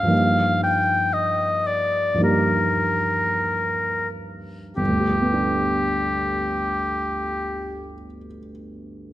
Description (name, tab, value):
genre	classical, impressionist duo for oboe and grand piano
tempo	44-61 BPM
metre	4/4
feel	rubato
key	unclear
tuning	A4 = 440 Hz
part	clear oboe	melody	0.0-7.9 s	G4 to G5	-22 LUFS	left 1 dB	none
part	warm grand piano	accompaniment	0.0-9.1 s	G1 to A4	-24 LUFS	right 1 dB	none
room	moderate scoring stage reverb, RT60 1.7 s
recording	none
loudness	-19 LUFS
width	side -14 dB against mid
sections	0.0-4.8 A section; 4.8-9.1 B section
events	slowing down 0.0-4.8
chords	0.1 Ebadd9/G; 4.8 Gadd9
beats	| 0.12 1.14 2.23 3.45 | 4.78 6.11 7.44 8.78